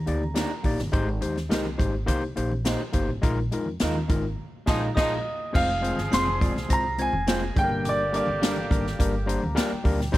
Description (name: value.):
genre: uptempo 1960s-style soul.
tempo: 104 BPM.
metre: 4/4.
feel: straight.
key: unclear.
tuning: A4 = 440 Hz.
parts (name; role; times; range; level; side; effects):
warm grand piano; melody; 0.0-0.6, 5.0-9.0 s; D5 to C6; -28 LUFS; right 1 dB; none.
upright bass; bass; 0.0-10.2 s; F1 to F2; -29 LUFS; equal; none.
overdriven tine electric piano; accompaniment; 0.1-10.2 s; G3 to Bb5; -29 LUFS; left 2 dB; none.
swinging big-band drum kit; drums; 0.1-10.2 s; crash cymbal, hi-hat, kick drum, snare drum; -27 LUFS; equal; none.
congas; percussion; 0.2-10.1 s; none; -37 LUFS; right 2 dB; none.
electric guitar through a small old amp; stabs; 0.4-9.7 s; Ab3 to D5; -33 LUFS; right 6 dB; spring reverb.
clear horn section; second line; 4.7-10.2 s; D3 to Bb4; -34 LUFS; equal; none.
glockenspiel with hard plastic mallets; second line; 4.9-9.0 s; D6 to C7; -37 LUFS; right 3 dB; none.
room: little or no reverb.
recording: none.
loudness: -23 LUFS.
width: side -16 dB against mid.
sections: 0.0-5.5 A section; 5.5-10.2 B section.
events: band accent 3.2-5.5; tine electric piano fill 9.0-10.1.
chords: 0.0 Ebmaj7; 0.9 Abmaj7; 2.1 Cm7; 3.2 Bb7sus4; 5.5 Fm; 7.6 Gm.